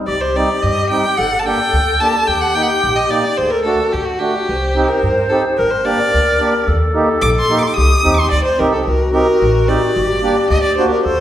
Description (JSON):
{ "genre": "klezmer", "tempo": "110 BPM", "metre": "2/4", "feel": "straight", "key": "C dorian sharp4", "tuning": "A4 = 442 Hz", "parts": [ { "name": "mellow clarinet", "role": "second line", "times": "0.0-11.2 s", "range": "F#4 to C5", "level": "-19 LUFS", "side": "left 2 dB", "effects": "none" }, { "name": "warm violin", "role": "melody", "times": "0.1-11.2 s", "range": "F#4 to Eb6", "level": "-17 LUFS", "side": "equal", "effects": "none" }, { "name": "upright bass", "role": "bass", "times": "0.1-11.2 s", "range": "G1 to G2", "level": "-20 LUFS", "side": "equal", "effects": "none" }, { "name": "mellow accordion", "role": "accompaniment", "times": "0.4-10.9 s", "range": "G3 to G4", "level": "-20 LUFS", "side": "right 2 dB", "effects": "none" } ], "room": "wet recital hall reverb, RT60 1.3 s", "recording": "recorded in a church or concert hall", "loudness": "-13 LUFS", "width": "side -11 dB against mid", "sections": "0.1-8.9 A section; 8.9-11.2 B section", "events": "violin solo 0.1-8.9", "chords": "0.1 Cm; 1.2 Gm; 2.3 Eb; 3.4 D; 4.5 Cm; 5.6 Gm; 6.7 Eb; 7.8 Cm; 10.0 Gm" }